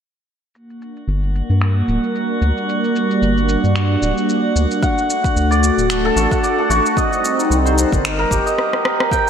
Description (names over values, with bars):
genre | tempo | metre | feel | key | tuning
organic downtempo | 112 BPM | 4/4 | swing 56% on 16ths | G harmonic minor | A4 = 440 Hz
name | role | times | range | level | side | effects
warm analog pad | sustained chords | 0.5-9.3 s | G3 to D5 | -20 LUFS | equal | chorus, sidechain pumping
electronic shaker, finger snaps and rim click | drums | 0.5-9.3 s | none | -24 LUFS | left 1 dB | overdrive, low-pass filter on perc, low-pass filter on snare
drifting glass-harmonics texture | texture | 1.3-8.6 s | F#4 to F#5 | -26 LUFS | right 2 dB | chorus, built-in reverb
round analog bass | bass | 1.1-8.4 s | D1 to G2 | -18 LUFS | equal | sidechain pumping
santur | arpeggios | 4.8-9.3 s | F#4 to G5 | -18 LUFS | right 1 dB | tape echo
electronic kick drum | drums | 4.8-9.2 s | none | -21 LUFS | equal | overdrive
room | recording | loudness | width
wet lush hall reverb, RT60 2.7 s | dreamy mix soaked in reverb | -15 LUFS | side -8 dB against mid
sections
0.5-9.1 A section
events
filter sweep on analog synth pad 0.5-9.1; drum fill 8.6-9.1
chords
0.5 Gm; 4.8 D; 7.0 Cm7